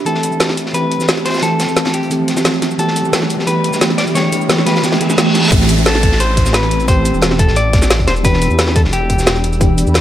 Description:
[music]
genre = liquid drum and bass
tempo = 176 BPM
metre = 4/4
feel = straight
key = A minor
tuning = A4 = 437 Hz
[part]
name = mellow FM electric piano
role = accompaniment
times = 0.0-10.0 s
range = E3 to G4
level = -18 LUFS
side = right 1 dB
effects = chorus
[part]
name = ethereal airy pad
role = sustained chords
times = 0.0-10.0 s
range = C4 to E6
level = -24 LUFS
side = equal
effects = ensemble chorus, built-in reverb, sidechain pumping
[part]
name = dark detuned saw bass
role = bass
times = 0.0-10.0 s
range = E1 to E2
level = -19 LUFS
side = equal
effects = high-pass filter
[part]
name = riser, reverse cymbal and downlifter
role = sound effects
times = 1.9-8.2 s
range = none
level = -22 LUFS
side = right 2 dB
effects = none
[part]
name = clean electric guitar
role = melody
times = 0.1-9.9 s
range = G4 to D5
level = -20 LUFS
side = left 1 dB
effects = dub echo
[part]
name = crunchy breakbeat drum kit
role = drums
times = 0.1-10.0 s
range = hi-hat, snare drum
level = -22 LUFS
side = equal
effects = high-pass filter on hats, high-pass filter on snare, high-pass filter on room
[part]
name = drum and bass drum kit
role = drums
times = 0.1-10.0 s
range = crash cymbal, hi-hat, shaker, snare drum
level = -18 LUFS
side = equal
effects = none
[part]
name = electronic kick drum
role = drums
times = 5.5-9.7 s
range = none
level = -14 LUFS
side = equal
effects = none
[sound]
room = moderate recital hall reverb, RT60 1.4 s, digital ambience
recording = none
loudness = -11 LUFS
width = side -12 dB against mid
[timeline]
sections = 0.0-5.5 A section; 5.5-10.0 B section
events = build-up 0.0-5.5; filter sweep on ambient pad 0.0-5.5; reverse cymbal 4.8-5.5; drop 5.5-10.0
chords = 0.1 Am7; 2.8 Em7; 5.5 Am7; 8.2 Em7

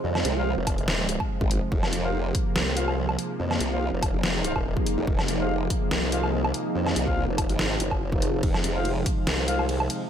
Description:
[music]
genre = heavy wobble dubstep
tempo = 143 BPM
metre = 4/4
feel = swing 54% on 16ths, half-time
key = F minor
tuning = A4 = 442 Hz
[part]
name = lush unison pad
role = sustained chords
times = 0.0-10.1 s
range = C3 to Bb3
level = -31 LUFS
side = equal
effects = chorus, phaser, sidechain pumping
[part]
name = formant-sweep wobble bass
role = bass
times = 0.0-9.9 s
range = Eb1 to F2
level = -28 LUFS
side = equal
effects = chorus, overdrive
[part]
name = deep dark ambient pad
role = texture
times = 0.0-10.1 s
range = Eb4 to Eb5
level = -33 LUFS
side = right 3 dB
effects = chorus, built-in reverb, sidechain pumping
[part]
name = formant-sweep wobble bass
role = bass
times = 0.2-9.0 s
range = F1 to C2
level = -27 LUFS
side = equal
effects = chorus, overdrive
[part]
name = dubstep drum kit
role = drums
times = 0.2-10.0 s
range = hi-hat, ride cymbal, snare drum, woodblock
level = -29 LUFS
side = equal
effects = none
[part]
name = mellow brass ensemble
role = stabs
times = 0.4-9.6 s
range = F4 to F5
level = -34 LUFS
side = left 3 dB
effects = ping-pong delay
[part]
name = electronic kick drum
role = drums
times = 0.7-9.2 s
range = none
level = -27 LUFS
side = equal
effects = none
[sound]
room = light reverb, digital ambience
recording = none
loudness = -23 LUFS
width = side -9 dB against mid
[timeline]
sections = 0.0-10.1 A section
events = none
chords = 0.0 Fm

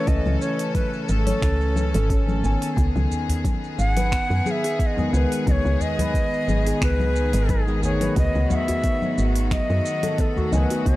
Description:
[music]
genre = organic downtempo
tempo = 89 BPM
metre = 4/4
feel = swing 54% on 16ths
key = unclear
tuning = A4 = 441 Hz
[part]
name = breathy Native American-style cedar flute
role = melody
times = 0.0-11.0 s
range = G#4 to F#5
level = -28 LUFS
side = equal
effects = tape echo, shimmer reverb
[part]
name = tine electric piano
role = accompaniment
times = 0.0-11.0 s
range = D#3 to G#5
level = -29 LUFS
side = left 1 dB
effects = sidechain pumping, tape echo, shimmer reverb
[part]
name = rich chamber string section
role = sustained chords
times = 0.0-11.0 s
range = C#3 to A4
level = -31 LUFS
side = left 2 dB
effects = sidechain pumping, shimmer reverb
[part]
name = handpan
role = arpeggios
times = 0.0-11.0 s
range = B3 to D#5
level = -30 LUFS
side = equal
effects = tape echo, shimmer reverb
[part]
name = woody FM bass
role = bass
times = 0.1-11.0 s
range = G#1 to F#2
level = -22 LUFS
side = equal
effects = sidechain pumping
[part]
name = electronic kick drum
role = drums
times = 0.1-11.0 s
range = none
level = -23 LUFS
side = equal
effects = overdrive
[part]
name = organic electronic drum kit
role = drums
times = 0.1-11.0 s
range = congas, finger snaps, hi-hat, shaker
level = -30 LUFS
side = left 4 dB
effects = overdrive
[part]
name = udu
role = percussion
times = 3.1-10.5 s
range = none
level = -28 LUFS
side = equal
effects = none
[sound]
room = light reverb, studio reverb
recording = dark, warm production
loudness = -19 LUFS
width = side -17 dB against mid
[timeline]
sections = 0.0-11.0 A section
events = none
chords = 0.0 C#sus2; 2.8 G#m

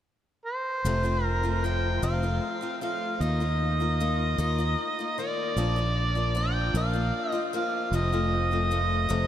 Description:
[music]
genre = rock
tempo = 51 BPM (dotted quarters)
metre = 6/8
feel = straight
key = F mixolydian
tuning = A4 = 438 Hz
[part]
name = overdriven harmonica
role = melody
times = 0.5-9.3 s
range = C5 to G5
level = -29 LUFS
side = right 1 dB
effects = ping-pong delay
[part]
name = fingered electric bass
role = bass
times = 0.8-9.3 s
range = F1 to Eb2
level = -27 LUFS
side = equal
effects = none
[part]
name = picked steel-string acoustic guitar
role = accompaniment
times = 0.9-9.3 s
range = F2 to F4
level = -31 LUFS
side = left 4 dB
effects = none
[sound]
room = moderate huge ambient reverb, RT60 7.4 s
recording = dreamy mix soaked in reverb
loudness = -25 LUFS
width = side -11 dB against mid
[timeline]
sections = 0.8-9.3 A section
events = none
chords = 0.0 N.C.; 0.8 F; 3.2 Ebsus2; 5.6 Bb; 7.9 F

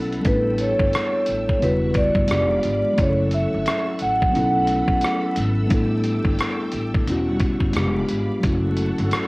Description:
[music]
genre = lo-fi hip hop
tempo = 88 BPM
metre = 4/4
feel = swing 60% on 16ths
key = unclear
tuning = A4 = 440 Hz
[part]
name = vibraphone with medium mallets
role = melody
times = 0.0-5.3 s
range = A4 to F#5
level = -22 LUFS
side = right 1 dB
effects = cassette tape
[part]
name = mellow tine electric piano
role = accompaniment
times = 0.0-9.3 s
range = C#3 to A4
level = -24 LUFS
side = left 1 dB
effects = cassette tape
[part]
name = string machine, cellos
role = sustained chords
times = 0.0-9.3 s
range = G3 to E6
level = -32 LUFS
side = equal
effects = ensemble chorus, cassette tape
[part]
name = upright bass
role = bass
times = 0.0-9.1 s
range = E1 to B1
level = -25 LUFS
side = equal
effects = none
[part]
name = dusty soul sampler-style drum kit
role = drums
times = 0.1-9.3 s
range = hi-hat, kick drum, rim click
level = -24 LUFS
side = equal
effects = none
[sound]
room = light reverb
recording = home recording on cassette, vinyl crackle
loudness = -18 LUFS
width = side -24 dB against mid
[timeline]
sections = 0.0-9.3 A section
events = none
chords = 0.3 A7sus4; 1.6 Em69; 2.3 Fdim7; 3.0 F#m7; 4.3 B7sus4; 5.7 A7sus4; 7.1 Em69; 7.8 Fdim7; 8.4 F#m7

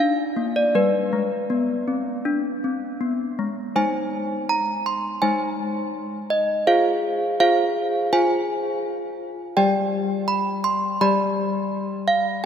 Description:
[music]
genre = classical, tune for handbells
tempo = 82 BPM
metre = 4/4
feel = straight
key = unclear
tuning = A4 = 440 Hz
[part]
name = desk bells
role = solo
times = 0.0-12.4 s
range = G3 to C6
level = -20 LUFS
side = equal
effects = none
[sound]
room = wet cathedral reverb, RT60 4.3 s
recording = none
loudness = -20 LUFS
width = side -8 dB against mid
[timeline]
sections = 0.0-3.8 A section; 3.8-12.5 B section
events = none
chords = 0.0 Bb; 0.7 G (rootless); 3.8 Ab; 6.7 Fm; 9.6 G

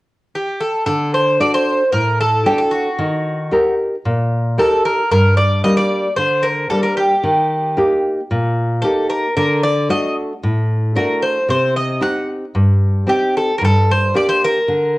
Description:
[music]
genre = greek folk, Greek bouzouki band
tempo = 113 BPM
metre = 4/4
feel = straight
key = D phrygian dominant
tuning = A4 = 440 Hz
[part]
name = Greek bouzouki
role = melody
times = 0.3-15.0 s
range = F#4 to F#5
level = -17 LUFS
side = equal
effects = cassette tape
[part]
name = nylon-string guitar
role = accompaniment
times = 0.9-15.0 s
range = G2 to Bb4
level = -16 LUFS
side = equal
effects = cassette tape
[sound]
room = moderate studio reverb, RT60 0.6 s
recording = home recording on cassette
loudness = -14 LUFS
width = side -19 dB against mid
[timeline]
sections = 0.9-15.0 A section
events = none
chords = 0.0 N.C.; 0.9 D; 3.0 Eb; 5.1 Gm; 7.2 Eb; 9.4 D; 11.5 Cm; 13.6 Gm

